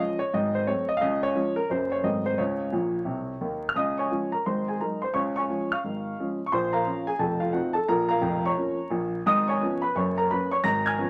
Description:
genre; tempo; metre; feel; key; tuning
jazz, stride piano; 174 BPM; 4/4; swing 62% on 8ths; Db major; A4 = 437 Hz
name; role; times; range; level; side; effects
clear grand piano; solo; 0.0-11.1 s; F1 to A#6; -26 LUFS; equal; none
room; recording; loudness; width
moderate club reverb, RT60 0.6 s; vinyl crackle; -26 LUFS; mono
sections
0.0-3.8 A section; 3.8-11.1 A section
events
grand piano fill 2.7-3.8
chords
0.3 Ab7b9; 1.0 Db; 1.7 Gb; 2.0 Ab7b9; 2.4 Bbmadd9; 3.8 Db; 4.4 Ab7; 5.1 Db; 6.5 Bbm; 7.2 F7; 7.9 Bbm; 9.3 C#7/G#; 10.0 F#

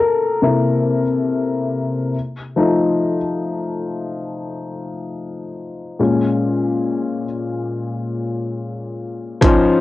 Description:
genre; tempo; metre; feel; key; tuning
lo-fi hip hop; free time; none; none; unclear; A4 = 440 Hz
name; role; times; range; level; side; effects
dark upright piano; accompaniment; 0.0-9.8 s; Bb2 to C5; -18 LUFS; left 2 dB; cassette tape, low-pass filter
boom bap sampler-style drum kit; drums; 9.4-9.6 s; hi-hat, kick drum; -15 LUFS; right 2 dB; vintage 12-bit sampler grit, cassette tape
room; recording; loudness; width
light reverb; home recording on cassette; -17 LUFS; side -16 dB against mid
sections
0.0-9.4 A section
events
upright piano solo 0.0-9.4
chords
0.0 C6; 2.1 F7; 6.0 Bbm7

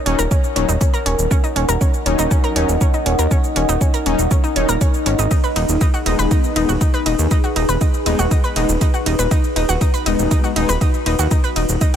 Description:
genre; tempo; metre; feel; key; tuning
melodic techno; 120 BPM; 4/4; straight; unclear; A4 = 440 Hz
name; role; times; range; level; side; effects
deep dark ambient pad; sustained chords; 0.0-12.0 s; Eb4 to Gb5; -23 LUFS; equal; chorus, built-in reverb, sidechain pumping
analog pluck; arpeggios; 0.1-11.9 s; Db4 to B4; -23 LUFS; left 1 dB; chorus, sidechain pumping, ping-pong delay
analog synth brass; stabs; 0.1-10.7 s; Gb3 to Eb4; -26 LUFS; left 6 dB; chorus, sidechain pumping, ping-pong delay
fat analog bass; bass; 0.1-11.8 s; Eb1 to Eb2; -19 LUFS; equal; sidechain pumping
punchy analog drum machine; drums; 0.1-12.0 s; hi-hat, ride cymbal, shaker; -26 LUFS; right 4 dB; overdrive
electronic kick drum; drums; 0.3-11.9 s; none; -16 LUFS; equal; none
room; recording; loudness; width
digital ambience; faint mains hum; -14 LUFS; side -9 dB against mid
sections
0.0-12.0 A section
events
none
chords
0.0 Ebm7; 5.3 B6/D#

